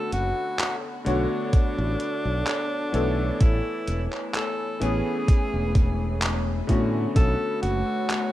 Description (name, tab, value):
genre	vaporwave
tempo	64 BPM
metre	4/4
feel	swing 54% on 16ths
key	B dorian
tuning	A4 = 439 Hz
part	edgy alto saxophone	melody	0.0-8.3 s	D4 to A4	-30 LUFS	left 1 dB	tape echo
part	warm electric grand piano	accompaniment	0.0-8.3 s	D3 to C#5	-29 LUFS	left 1 dB	lush chorus
part	warbly tape-like pad	sustained chords	0.0-8.3 s	A3 to B5	-33 LUFS	equal	chorus, built-in reverb, phaser, vintage 12-bit sampler grit
part	modern bright fingered electric bass	bass	0.1-7.8 s	E1 to A2	-26 LUFS	equal	none
part	detuned 8-bit digital drum machine	drums	0.1-8.3 s	handclaps, hi-hat	-30 LUFS	equal	none
part	electronic kick drum	drums	1.5-7.4 s	none	-20 LUFS	equal	overdrive
room	little or no reverb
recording	rough home demo mix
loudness	-22 LUFS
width	side -14 dB against mid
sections	0.0-8.3 A section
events	none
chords	0.0 Bm9; 3.4 Amaj9; 7.2 Bm9